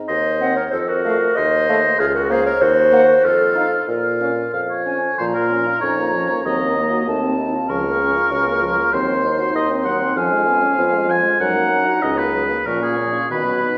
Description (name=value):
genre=quick classical-period movement for wind quintet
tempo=96 BPM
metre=2/4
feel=rubato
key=Bb minor, F# major from 10.2 s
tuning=A4 = 441 Hz
part: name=clear French horn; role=accompaniment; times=0.0-13.8 s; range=D#3 to F#4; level=-29 LUFS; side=equal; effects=none
part: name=warm oboe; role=second line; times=0.1-13.8 s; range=F4 to G#5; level=-23 LUFS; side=equal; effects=none
part: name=mellow clarinet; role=accompaniment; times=0.1-13.8 s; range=Bb3 to Eb5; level=-23 LUFS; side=equal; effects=none
part: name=mellow bassoon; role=bass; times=0.1-13.8 s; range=Db2 to B2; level=-24 LUFS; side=equal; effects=none
part: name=silver concert flute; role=melody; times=0.4-13.8 s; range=F5 to Db6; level=-28 LUFS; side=equal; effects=none
room=wet recital hall reverb, RT60 1.8 s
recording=heard from further back in the room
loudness=-18 LUFS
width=mono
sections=0.0-5.2 A section; 5.2-13.8 B section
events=none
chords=0.1 Cdim/Eb; 0.7 F; 1.4 F7/Eb; 2.0 Bbm/Db; 2.6 Cm7b5/Eb; 3.2 F7; 3.9 Bbm; 6.5 Ebm; 7.1 F7/Eb; 7.7 Bbm/Db; 8.9 Cdim/Eb; 10.2 C#7/E#; 11.4 F#; 12.7 A#m